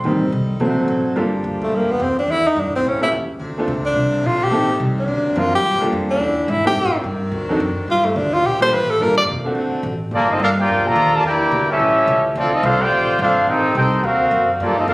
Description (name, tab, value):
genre	jazz, big band swing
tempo	214 BPM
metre	4/4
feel	swing 61% on 8ths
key	G minor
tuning	A4 = 438 Hz
part	warm saxophone section	sustained chords	0.0-14.9 s	C3 to A4	-27 LUFS	equal	none
part	upright bass	bass	0.0-14.9 s	F1 to A2	-25 LUFS	equal	none
part	bright grand piano	accompaniment	0.1-9.8 s	Eb3 to A#4	-20 LUFS	equal	none
part	breathy tenor saxophone	melody	1.6-9.2 s	A3 to D5	-17 LUFS	equal	none
part	warm trumpet section	melody	10.1-14.9 s	Bb3 to Bb5	-15 LUFS	equal	none
part	mellow trombone section	second line	10.1-14.9 s	D3 to G4	-26 LUFS	equal	none
room	moderate large studio reverb, RT60 0.8 s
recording	recorded on a phone in the room, club reverb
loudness	-15 LUFS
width	side -21 dB against mid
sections	0.0-1.2 A section; 1.2-10.1 A section; 10.1-14.9 B section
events	grand piano solo 0.0-1.2; tenor saxophone solo 1.2-10.1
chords	0.0 Am7b5; 0.6 D7; 1.2 Gm9; 2.3 Em7b5; 2.8 A7; 3.4 Dm7; 4.5 Am7b5; 5.1 D7alt; 5.6 Gm9; 6.2 E7alt; 6.8 Am7b5; 7.3 D7b9; 7.9 Gm9; 9.6 D7; 10.1 Gm9; 11.2 Em7b5; 11.8 A7; 12.4 Dm7; 13.5 Am7b5; 14.0 D7alt